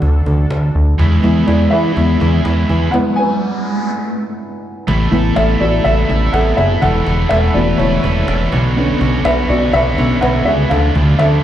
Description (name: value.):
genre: piano-driven pop.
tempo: 123 BPM.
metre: 4/4.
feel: straight.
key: A major.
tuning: A4 = 440 Hz.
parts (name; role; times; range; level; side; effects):
dark upright piano; accompaniment; 0.0-11.4 s; D3 to G#5; -17 LUFS; left 1 dB; slapback echo.
sweeping resonant pad; sustained chords; 0.0-11.4 s; D3 to B4; -24 LUFS; left 1 dB; chorus.
fat analog bass; bass; 0.0-11.4 s; E1 to E3; -15 LUFS; equal; none.
cajon; drums; 0.0-11.3 s; none; -24 LUFS; equal; none.
cranked stack guitar; riff; 1.0-11.4 s; B2 to E5; -20 LUFS; right 4 dB; overdrive, slapback echo.
riser; sound effects; 2.4-3.9 s; none; -24 LUFS; right 1 dB; slapback echo.
room: light reverb, studio ambience.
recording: live gig heard through the venue's PA, club reverb.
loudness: -12 LUFS.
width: side -11 dB against mid.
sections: 0.0-4.9 A section; 4.9-11.4 B section.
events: upright piano solo 0.0-4.9, 4.9-11.4; riser 2.4-4.9; stop 2.9-4.9.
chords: 0.0 D; 1.0 E; 4.9 Asus2; 6.8 Esus4; 8.5 Bmadd9; 10.7 Dmadd9.